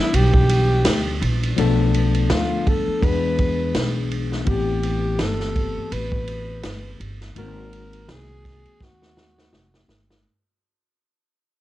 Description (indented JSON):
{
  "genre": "hip hop, jazz-hop",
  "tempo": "83 BPM",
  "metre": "4/4",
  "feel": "swing 59% on 16ths",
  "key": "unclear",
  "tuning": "A4 = 440 Hz",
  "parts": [
    { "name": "breathy alto saxophone", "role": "melody", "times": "0.0-9.9 s", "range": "E4 to B4", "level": "-26 LUFS", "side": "right 1 dB", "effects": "cassette tape" },
    { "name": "barky tine electric piano", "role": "accompaniment", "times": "0.0-10.3 s", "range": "D#3 to A4", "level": "-26 LUFS", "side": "left 8 dB", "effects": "overdrive, auto-pan, cassette tape" },
    { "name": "upright bass", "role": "bass", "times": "0.1-10.2 s", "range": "F1 to E2", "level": "-22 LUFS", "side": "right 1 dB", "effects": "none" },
    { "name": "vintage drum kit", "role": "drums", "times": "0.1-10.2 s", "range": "hi-hat, kick drum, ride cymbal, snare drum", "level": "-24 LUFS", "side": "right 1 dB", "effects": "none" }
  ],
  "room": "little or no reverb",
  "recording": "home recording on cassette",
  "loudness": "-18 LUFS",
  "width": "side -15 dB against mid",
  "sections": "0.0-10.3 A section",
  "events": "fade-out 0.0-10.3; drum fill 8.8-10.3",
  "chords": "0.0 Em7; 1.6 Bm7b5; 3.0 E7; 4.5 Am9; 7.4 G#9"
}